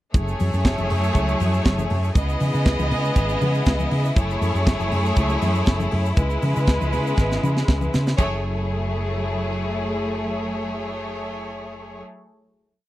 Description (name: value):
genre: disco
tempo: 120 BPM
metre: 4/4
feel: straight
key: F# dorian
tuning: A4 = 440 Hz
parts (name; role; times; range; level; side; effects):
- clear studio violin section; second line; 0.1-12.0 s; G#3 to D#5; -26 LUFS; equal; none
- clear studio string section; sustained chords; 0.1-12.0 s; C#3 to G#4; -28 LUFS; left 1 dB; none
- hollow-body short-scale fingered electric bass; bass; 0.1-12.0 s; F#1 to C#3; -23 LUFS; equal; none
- tight funk drum kit; drums; 0.1-8.3 s; hi-hat, kick drum, snare drum; -18 LUFS; equal; none
- egg shaker; percussion; 0.1-8.4 s; none; -47 LUFS; right 21 dB; none
- congas; percussion; 0.2-8.4 s; none; -32 LUFS; left 3 dB; none
room: little or no reverb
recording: dry, close 1970s-style studio recording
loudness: -19 LUFS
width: side -15 dB against mid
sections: 0.1-8.2 groove; 8.2-12.2 final chord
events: drum fill 7.2-8.2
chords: 0.1 F#m9; 2.2 C#m7; 4.2 F#m9; 6.2 C#m7; 8.2 F#m9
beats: | 0.14 0.65 1.15 1.65 | 2.16 2.66 3.16 3.67 | 4.17 4.67 5.17 5.67 | 6.17 6.68 7.18 7.68 | 8.18 8.68 9.18 9.69 | 10.19 10.69 11.19 11.69